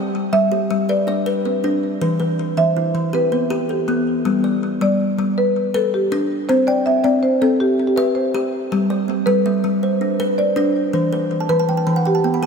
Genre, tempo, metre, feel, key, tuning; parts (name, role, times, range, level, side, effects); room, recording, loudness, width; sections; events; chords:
southern african traditional, mbira-style interlocking cycle; 108 BPM (dotted quarters); 12/8; straight; G major; A4 = 440 Hz
kalimba; arpeggios; 0.0-12.5 s; E3 to G5; -19 LUFS; left 2 dB; ping-pong delay
kalimba; arpeggios; 0.0-4.3, 8.9-12.5 s; E3 to B5; -23 LUFS; right 6 dB; ping-pong delay
marimba with medium mallets; melody; 0.3-12.4 s; G4 to E5; -20 LUFS; equal; ping-pong delay
moderate huge ambient reverb, RT60 5.0 s; dreamy mix soaked in reverb; -16 LUFS; side -5 dB against mid
0.0-4.3 A section; 4.3-12.5 B section
kalimba fill 11.2-12.5
0.0 G; 2.0 Em; 4.3 G; 6.5 C; 8.7 G; 10.9 Em